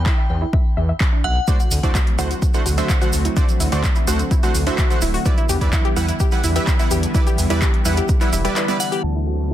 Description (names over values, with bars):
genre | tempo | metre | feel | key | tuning
progressive house | 127 BPM | 4/4 | straight | E minor | A4 = 438 Hz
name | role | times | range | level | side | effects
glassy synth bell | melody | 0.0-1.3, 8.8-9.5 s | F#5 to A5 | -28 LUFS | left 3 dB | chorus, phaser, sidechain pumping, ping-pong delay
dark detuned saw bass | bass | 0.0-9.5 s | D1 to E2 | -21 LUFS | equal | sidechain pumping
analog pluck | arpeggios | 0.1-9.5 s | B3 to E5 | -27 LUFS | left 2 dB | chorus, sidechain pumping, tape echo
deep house drum kit | drums | 0.1-9.0 s | handclaps, hi-hat | -27 LUFS | equal | overdrive
electronic kick drum | drums | 0.1-8.2 s | none | -18 LUFS | equal | overdrive
lush unison pad | sustained chords | 1.5-9.5 s | D3 to F#4 | -28 LUFS | equal | chorus, sidechain pumping
supersaw stab | stabs | 1.5-8.8 s | D3 to F#5 | -24 LUFS | right 3 dB | sidechain pumping, tape echo
tube shaker | percussion | 1.5-9.0 s | none | -30 LUFS | right 5 dB | none
downlifter | sound effects | 9.2-9.5 s | none | -46 LUFS | left 4 dB | none
room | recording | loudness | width
digital ambience | dense, heavily limited modern master, low-pass filter | -16 LUFS | side -12 dB against mid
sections
0.0-9.0 A section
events
filter sweep on synth pluck 0.0-9.0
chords
0.0 E5; 1.5 D7; 5.3 Em7; 9.0 D7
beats
0.06 0.53 1.00 | 1.48 1.95 2.42 2.90 | 3.37 3.84 4.31 4.79 | 5.26 5.73 6.20 6.67 | 7.15 7.62 8.09 8.56 | 9.04 9.51